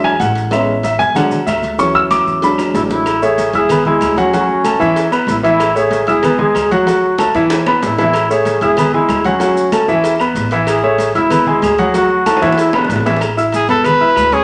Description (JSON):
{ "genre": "latin, salsa", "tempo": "189 BPM", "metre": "4/4", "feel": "straight", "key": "A major", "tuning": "A4 = 441 Hz", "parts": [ { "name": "warm grand piano", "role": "accompaniment", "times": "0.0-14.4 s", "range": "E3 to E6", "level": "-16 LUFS", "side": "equal", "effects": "none" }, { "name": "upright bass", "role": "bass", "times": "0.0-14.4 s", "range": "E1 to E2", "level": "-27 LUFS", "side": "equal", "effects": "none" }, { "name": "agogo bells and timbales", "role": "percussion", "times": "0.0-14.3 s", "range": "none", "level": "-28 LUFS", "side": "equal", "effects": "none" }, { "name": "claves", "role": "percussion", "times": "0.0-14.3 s", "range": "none", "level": "-34 LUFS", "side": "equal", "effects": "none" }, { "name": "congas", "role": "percussion", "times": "0.0-14.4 s", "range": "none", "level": "-27 LUFS", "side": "equal", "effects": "none" }, { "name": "cowbell and bongos", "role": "percussion", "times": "0.2-14.4 s", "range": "none", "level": "-27 LUFS", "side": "equal", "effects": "none" }, { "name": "maracas", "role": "percussion", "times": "0.2-14.4 s", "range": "none", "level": "-37 LUFS", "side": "equal", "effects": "none" }, { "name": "warm duduk", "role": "melody", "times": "2.8-13.1 s", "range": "C#4 to G#4", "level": "-19 LUFS", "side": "equal", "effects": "none" }, { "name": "clear trumpet", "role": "melody", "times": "13.5-14.4 s", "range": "G#4 to B4", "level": "-13 LUFS", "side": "equal", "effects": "none" } ], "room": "wet large studio reverb, RT60 1.0 s", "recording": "none", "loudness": "-14 LUFS", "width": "mono", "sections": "0.0-3.1 A section; 3.1-13.2 B section; 13.2-14.4 A section", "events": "grand piano solo 0.0-3.1; drum fill 2.6-3.1, 7.2-8.1, 12.3-13.2; trumpet solo 13.2-14.4", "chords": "0.0 E7; 0.5 Amaj7; 1.2 E7; 1.8 Dmaj7; 2.4 E7; 3.1 Amaj7; 3.7 E7; 4.3 Dmaj7; 5.0 E5; 5.6 Amaj7; 6.2 E7; 6.9 D; 7.5 E5; 8.1 Amaj7; 8.8 E7; 9.4 Dmaj7; 10.0 E5; 10.7 Amaj7; 11.3 E7; 11.9 D; 12.6 E5; 13.2 A5; 13.8 E5" }